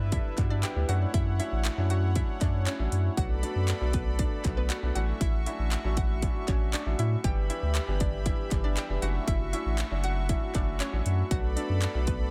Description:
dance-pop; 118 BPM; 4/4; straight; D major; A4 = 442 Hz
hollow square pluck; melody; 0.0-12.3 s; B3 to G5; -40 LUFS; equal; chorus, sidechain pumping, delay
clear concert grand piano; accompaniment; 0.0-12.3 s; E3 to A4; -39 LUFS; equal; sidechain pumping
warm analog pad; sustained chords; 0.0-12.3 s; E4 to C#6; -40 LUFS; equal; chorus, sidechain pumping
saturated sub bass; bass; 0.0-12.3 s; F1 to A2; -30 LUFS; equal; sidechain pumping
impact; sound effects; 0.0-1.1 s; barely audible
house drum kit; drums; 0.1-12.2 s; handclaps, hi-hat, kick drum; -33 LUFS; equal
group handclap; percussion; 0.4-11.9 s; -45 LUFS; equal
digital ambience; -28 LUFS; mono
0.0-12.3 A section
impact 0.0-1.1
0.0 G6; 0.9 Dmaj9; 3.2 Bm7; 5.0 Dmaj9/A; 7.2 G6; 9.0 Dmaj9/F#; 11.3 Bm7

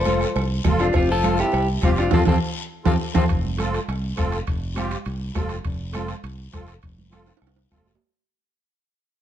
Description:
latin, cumbia; 204 BPM; 4/4; straight; F major; A4 = 440 Hz
clean electric guitar; melody; 0.0-3.2 s; C4 to C5; -23 LUFS; left 1 dB; spring reverb, slapback echo
growling tenor saxophone; second line; 0.0-3.2 s; C3 to F3; -31 LUFS; left 6 dB
fingered electric bass; bass; 0.0-8.0 s; F1 to F2; -25 LUFS; right 1 dB
musette accordion; accompaniment; 0.1-7.9 s; C4 to A4; -29 LUFS; equal
bombo; percussion; 0.1-7.9 s; -25 LUFS; left 2 dB
congas; percussion; 0.1-7.9 s; -28 LUFS; right 4 dB
cowbell and timbales; percussion; 0.1-8.0 s; -33 LUFS; right 7 dB
guiro; percussion; 0.1-8.0 s; -38 LUFS; left 6 dB
light reverb; dark, warm production; -20 LUFS; side -10 dB against mid
0.0-3.3 A section; 3.3-8.0 B section
band accent 2.1-3.3; drum fill 2.7-3.3, 7.3-8.0; fade-out 3.3-8.0
0.0 F

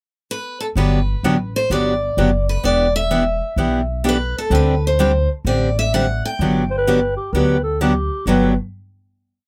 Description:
acoustic string swing (jazz manouche); 128 BPM; 4/4; swing 65% on 8ths; G major; A4 = 439 Hz
picked steel-string acoustic guitar; melody; 0.3-7.8 s; A4 to G5; -24 LUFS; equal
picked steel-string acoustic guitar; accompaniment; 0.8-8.5 s; G2 to G4; -20 LUFS; equal
upright bass; bass; 0.8-8.5 s; E1 to D2; -23 LUFS; equal
growling clarinet; second line; 6.7-8.6 s; G4 to C5; -23 LUFS; equal
little or no reverb; -18 LUFS; mono
0.0-0.8 pickup bar; 0.8-8.3 A section; 8.3-9.5 final chord
0.0 N.C.; 0.8 Gmaj7; 2.6 Em7; 4.5 D7sus4; 6.4 Gmaj7

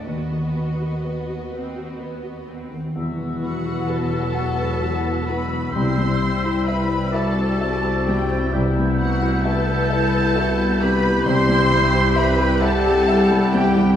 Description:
cinematic, emotional film score for orchestra; 43 BPM (dotted quarters); 6/8; rubato; E minor; A4 = 440 Hz
warm symphonic violin section; melody; 0.0-14.0 s; D#5 to C6; -27 LUFS; left 3 dB
rich symphonic violin section; second line; 0.0-13.9 s; B3 to B4; -30 LUFS; left 2 dB
clear symphonic viola section; accompaniment; 0.0-14.0 s; G3 to C5; -28 LUFS; right 1 dB
warm grand piano; accompaniment; 0.0-14.0 s; C2 to F#5; -24 LUFS; equal
concert harp; arpeggios; 0.0-14.0 s; C3 to E6; -30 LUFS; left 3 dB
warm symphonic cello section; bass; 0.0-13.9 s; C2 to E2; -26 LUFS; equal
mellow French horn section; sustained chords; 2.9-14.0 s; F#3 to E4; -29 LUFS; left 3 dB
warm symphonic double bass section; bass; 2.9-13.9 s; E1 to C2; -27 LUFS; equal
clear clarinet; second line; 3.0-14.0 s; D4 to G4; -27 LUFS; left 1 dB
clear oboe; second line; 3.0-14.0 s; D5 to F#5; -31 LUFS; equal
hollow concert flute; second line; 3.0-13.7 s; E6 to G6; -30 LUFS; right 2 dB
wet scoring stage reverb, RT60 2.0 s; heard from further back in the room; -17 LUFS; side -9 dB against mid
0.0-3.0 A section; 3.0-14.0 B section
0.1 B/D#; 3.0 Esus2; 5.8 C; 8.5 Amadd9/C; 11.3 C

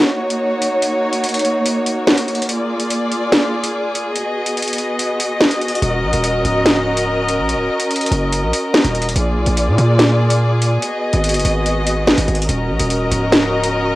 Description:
hip hop, drill; 144 BPM; 4/4; half-time; Eb minor; A4 = 440 Hz
dark chamber string section; sustained chords; 0.0-14.0 s; Bb3 to Eb5; -18 LUFS; equal; cassette tape
drill drum kit; drums; 0.3-13.7 s; hi-hat, snare drum; -17 LUFS; equal; vintage 12-bit sampler grit, cassette tape
hard-hitting 808-style bass; bass; 5.8-14.0 s; Db1 to Bb2; -18 LUFS; equal
light reverb; home recording on cassette; -14 LUFS; side -17 dB against mid
0.0-12.5 A section; 12.5-14.0 B section
break 0.0-5.8
0.0 Ebm7; 2.5 Bb7; 4.2 Abm7; 5.8 Ebm7; 9.2 Bb7; 10.8 Abm7; 12.5 Ebm7

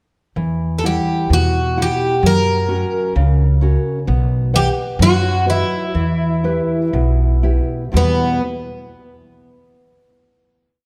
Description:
fado-style ballad; 60-65 BPM; 2/4; rubato; E harmonic minor; A4 = 441 Hz
nylon-string guitar; accompaniment; 0.4-8.4 s; E2 to F#5; -22 LUFS; equal
upright bass; bass; 0.4-8.4 s; B1 to F#2; -20 LUFS; equal
picked twelve-string acoustic guitar; melody; 0.8-8.4 s; B3 to A#4; -21 LUFS; equal
light reverb; -17 LUFS; mono
0.3-7.9 A section; 7.9-9.8 final chord
0.3 Emadd9; 2.2 F#; 4.1 B; 5.9 Em

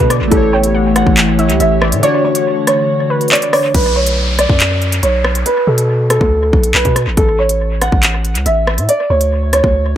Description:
hip hop, drill; 140 BPM; 4/4; half-time; B minor; A4 = 436 Hz
dark grand piano; melody; 0.0-10.0 s; A4 to F#5; -16 LUFS; right 1 dB; dub echo
warbly lo-fi synth keys; accompaniment; 0.0-3.8 s; D3 to C#5; -17 LUFS; left 1 dB; chorus, phaser, dub echo
glassy FM pad; sustained chords; 0.0-3.7 s; D3 to C#5; -20 LUFS; left 1 dB; ensemble chorus, built-in reverb
long sustained 808-style bass; bass; 0.0-9.9 s; A1 to B2; -16 LUFS; equal
drill drum kit; drums; 0.0-9.7 s; crash cymbal, handclaps, hi-hat, kick drum, rim click; -15 LUFS; equal; dub echo
warbly dusty pluck; second line; 0.1-3.7 s; B4 to G5; -22 LUFS; left 1 dB; chorus, dub echo
downlifter; sound effects; 3.7-7.2 s; -23 LUFS; equal
light reverb; echo-heavy mix; -10 LUFS; side -11 dB against mid
0.0-3.7 A section; 3.7-10.0 B section
kick muted 2.0-3.7
0.3 A7; 2.0 Dmaj7; 3.7 B7(no3); 7.2 A; 8.9 N.C.

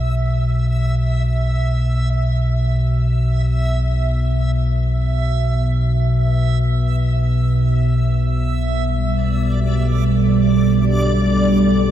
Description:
dark ambient drone; free time; B minor; A4 = 439 Hz
deep rumbling drone; drone; 0.0-11.9 s; B1 to B2; -16 LUFS; left 1 dB; built-in reverb
backwards swelling texture; texture; 0.0-11.9 s; D5 to E5; -27 LUFS; right 2 dB; built-in reverb
dark analog pad; sustained chords; 8.5-11.9 s; G3 to A4; -17 LUFS; right 3 dB; chorus
light reverb; -15 LUFS; side -11 dB against mid
0.0-11.9 A section
fade-in on synth texture 0.0-11.9
0.0 Bsus4; 8.6 G5

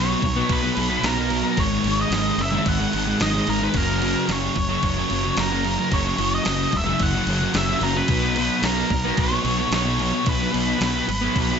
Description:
rock, shoegaze and dream pop; 110 BPM; 4/4; straight; B major; A4 = 440 Hz
octave-fuzz lead guitar; melody; 0.0-11.6 s; A#4 to F#5; -25 LUFS; equal; distortion, slapback echo
fuzz guitar; riff; 0.0-11.6 s; F#2 to B3; -23 LUFS; equal; distortion, wide subtle chorus
fuzz fingered electric bass; bass; 0.0-11.6 s; E1 to B1; -27 LUFS; equal; overdrive
clean 12-bit digital drum machine; drums; 0.2-11.5 s; crash cymbal, kick drum, snare drum; -26 LUFS; right 1 dB
light reverb; nothing above 7.8 kHz; -19 LUFS; side -7 dB against mid
0.0-11.6 A section
0.0 B5; 1.6 G#5; 3.7 F#; 8.1 B5

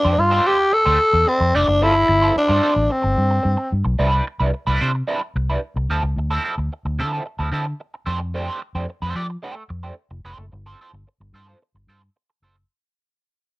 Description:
disco; 110 BPM; 4/4; straight; A4 = 440 Hz
growling tenor saxophone; melody; 0.0-3.7 s; C4 to A4; -16 LUFS; equal; cassette tape
electric guitar at the edge of break-up; accompaniment; 0.0-12.6 s; F3 to D5; -24 LUFS; right 2 dB; wah
vintage muted fingered electric bass; bass; 0.0-12.6 s; F1 to F3; -22 LUFS; equal
light reverb; home recording on cassette; -17 LUFS; side -20 dB against mid
0.0-4.0 A section; 4.0-12.7 B section
fade-out 4.0-12.7
0.0 F69; 1.8 G9sus4; 4.0 Cmaj9; 5.9 Dm9; 8.1 F69; 10.5 G9sus4

